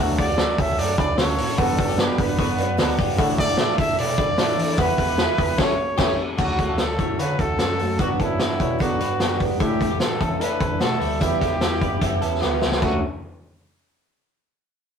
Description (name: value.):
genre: jangly indie pop.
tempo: 149 BPM.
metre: 4/4.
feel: straight.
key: D major.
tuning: A4 = 442 Hz.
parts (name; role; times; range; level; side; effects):
clear upright piano; accompaniment; 0.0-6.4, 9.6-13.0 s; B3 to D5; -33 LUFS; left 5 dB; none.
picked twelve-string acoustic guitar; accompaniment; 0.0-13.0 s; G2 to E4; -27 LUFS; right 5 dB; none.
twelve-string electric guitar; arpeggios; 0.0-13.0 s; G3 to C#5; -28 LUFS; left 2 dB; none.
mellow tine electric piano; bass; 0.0-13.0 s; A1 to A3; -29 LUFS; left 1 dB; medium stereo tremolo.
breathy trumpet; melody; 0.2-13.0 s; E4 to E5; -26 LUFS; equal; none.
vintage drum kit; drums; 0.2-12.9 s; crash cymbal, hi-hat, kick drum, snare drum; -23 LUFS; equal; none.
room: moderate studio reverb, RT60 0.6 s.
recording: rough rehearsal-room recording, warm saturation.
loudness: -19 LUFS.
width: side -7 dB against mid.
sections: 0.0-6.4 A section; 6.4-12.8 B section; 12.8-14.4 C section.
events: band accent 5.6-6.4; drum fill 12.4-12.8.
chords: 0.0 Dmaj7; 1.6 Gmaj7; 3.2 Asus4; 4.8 Em; 5.6 A7; 6.4 Dmaj7; 8.0 Gmaj7; 9.6 Asus4; 11.2 Em; 12.8 Dmaj7.